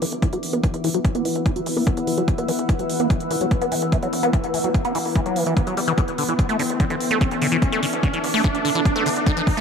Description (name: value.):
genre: psychedelic trance.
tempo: 146 BPM.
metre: 4/4.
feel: straight.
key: unclear.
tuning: A4 = 440 Hz.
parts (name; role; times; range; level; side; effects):
bubbling stepped-filter texture; sustained chords; 0.0-9.6 s; E3 to B3; -28 LUFS; left 3 dB; chorus, built-in reverb, sidechain pumping.
liquid acid bass; riff; 0.0-9.6 s; D3 to B3; -24 LUFS; equal; phaser, auto-pan, sidechain pumping, dub echo.
tight sequencer bass; bass; 0.0-9.6 s; D1 to E2; -35 LUFS; equal; high-pass filter.
electronic hi-hat; drums; 0.0-9.6 s; none; -32 LUFS; right 3 dB; none.
riser; sound effects; 2.3-9.6 s; none; -30 LUFS; right 1 dB; none.
deep dark ambient pad; texture; 0.0-9.6 s; D4 to E6; -28 LUFS; equal; chorus, built-in reverb, sidechain pumping.
electronic kick drum; drums; 0.2-9.6 s; none; -20 LUFS; equal; none.
room: light reverb, digital ambience.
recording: none.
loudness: -19 LUFS.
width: side -6 dB against mid.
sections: 0.0-9.6 A section.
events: build-up 0.0-9.6; filter sweep on acid bass 0.0-9.6; filter sweep on synth texture 0.0-9.6; riser 2.3-9.6; drum fill 6.0-9.6.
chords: 0.0 E5; 6.0 D5.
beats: 0.22 0.64 | 1.05 1.46 1.87 2.28 | 2.69 3.10 3.51 3.92 | 4.33 4.75 5.16 5.57 | 5.98 6.39 6.80 7.21 | 7.62 8.03 8.44 8.85 | 9.27.